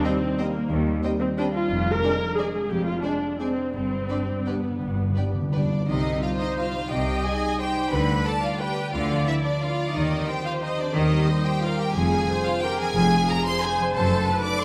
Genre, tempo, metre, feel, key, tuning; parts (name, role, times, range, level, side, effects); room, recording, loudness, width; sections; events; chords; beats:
classical; 161-195 BPM; 3/4; rubato; C minor; A4 = 438 Hz
rich studio violin section; melody; 0.0-14.6 s; D5 to D6; -31 LUFS; equal
clear studio violin section; second line; 0.0-14.6 s; D4 to Eb5; -34 LUFS; equal
warm studio viola section; accompaniment; 0.0-14.6 s; Bb3 to Eb5; -30 LUFS; equal
warm French horn section; sustained chords; 0.0-5.7 s; G3 to D4; -36 LUFS; equal
concert harp; arpeggios; 0.0-14.6 s; F2 to Eb5; -32 LUFS; equal
rich studio cello section; bass; 0.7-14.2 s; Eb2 to Eb3; -31 LUFS; equal
rich studio double bass section; bass; 0.7-14.2 s; F1 to Eb2; -32 LUFS; equal
timpani; percussion; 3.8-6.4 s; G2 to C3; -31 LUFS; equal
wet scoring stage reverb, RT60 1.6 s; -24 LUFS; mono
0.0-5.9 A section; 5.9-14.6 B section
timpani fill 3.8-5.9
0.0 Cm/Eb; 1.7 Dm7b5/F; 3.8 G; 5.9 Cm; 7.9 Bdim/D; 10.0 Cm/Eb; 12.0 Dm7b5/F; 14.0 F#dim7
0.05 0.39 | 0.71 1.04 1.38 | 1.71 2.04 2.38 | 2.71 3.04 3.40 | 3.75 4.10 4.47 | 4.82 5.17 5.54 | 5.89 6.23 6.58 | 6.91 7.25 7.60 | 7.93 8.27 8.62 | 8.95 9.28 9.63 | 9.96 10.29 10.63 | 10.96 11.29 11.64 | 11.96 12.29 12.64 | 12.96 13.29 13.63 | 13.96 14.28 14.62